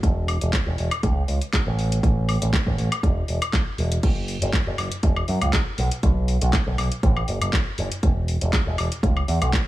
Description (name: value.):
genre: nu-disco, nu disco.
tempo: 120 BPM.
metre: 4/4.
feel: swing 53% on 16ths.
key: F# minor.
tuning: A4 = 441 Hz.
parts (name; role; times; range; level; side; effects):
picked electric bass with an envelope filter; bass; 0.0-9.5 s; E1 to F#2; -22 LUFS; equal; none.
electronic kick drum; drums; 0.0-9.6 s; none; -21 LUFS; equal; none.
house drum kit; drums; 0.0-9.6 s; crash cymbal, handclaps, hi-hat, woodblock; -28 LUFS; left 2 dB; none.
room: little or no reverb.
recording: small room ambience.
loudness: -20 LUFS.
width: side -16 dB against mid.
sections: 0.0-4.0 A section; 4.0-9.7 B section.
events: drop 4.0-9.7.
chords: none.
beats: | 0.03 0.53 1.03 1.53 | 2.03 2.53 3.03 3.53 | 4.03 4.53 5.03 5.53 | 6.03 6.53 7.03 7.53 | 8.03 8.53 9.03 9.53.